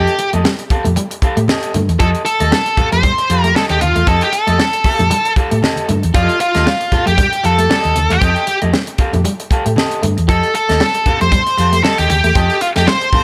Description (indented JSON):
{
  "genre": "funk",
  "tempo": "116 BPM",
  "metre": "4/4",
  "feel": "swing 56% on 16ths",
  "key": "unclear",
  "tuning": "A4 = 441 Hz",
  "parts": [
    { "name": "octave-fuzz lead guitar", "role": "melody", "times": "0.0-13.2 s", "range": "F4 to C5", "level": "-18 LUFS", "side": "equal", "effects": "distortion, tape echo" },
    { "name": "electric guitar through a small old amp", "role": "accompaniment", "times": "0.0-13.2 s", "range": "G4 to F5", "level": "-25 LUFS", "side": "equal", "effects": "none" },
    { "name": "hollow-body short-scale fingered electric bass", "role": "bass", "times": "0.0-13.2 s", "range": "Eb2 to A2", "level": "-18 LUFS", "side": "equal", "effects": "none" },
    { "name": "tight funk drum kit", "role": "drums", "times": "0.1-13.2 s", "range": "hi-hat, kick drum, snare drum", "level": "-20 LUFS", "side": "equal", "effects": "none" },
    { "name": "clean electric guitar", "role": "riff", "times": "0.2-13.0 s", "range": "F3 to C4", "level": "-26 LUFS", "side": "equal", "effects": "spring reverb" },
    { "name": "congas", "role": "percussion", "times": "0.2-13.2 s", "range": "none", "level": "-28 LUFS", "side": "equal", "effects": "none" }
  ],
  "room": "studio reverb",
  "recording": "none",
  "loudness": "-14 LUFS",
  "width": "mono",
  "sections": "0.0-13.2 A section",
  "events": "none",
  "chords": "0.0 F9"
}